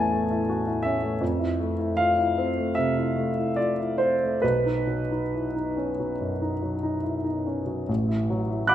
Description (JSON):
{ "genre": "classical, impressionist solo piano", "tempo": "66-83 BPM", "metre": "4/4", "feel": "rubato", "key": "unclear", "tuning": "A4 = 440 Hz", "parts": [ { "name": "warm grand piano", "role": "solo", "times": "0.0-8.7 s", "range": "A1 to F#6", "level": "-23 LUFS", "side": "equal", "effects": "none" } ], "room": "wet recital hall reverb, RT60 1.7 s", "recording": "none", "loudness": "-23 LUFS", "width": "side -11 dB against mid", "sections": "0.0-7.9 A section", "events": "none", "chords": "0.0 Amaj7; 1.2 Fmaj7; 4.4 Badd9; 7.9 A5" }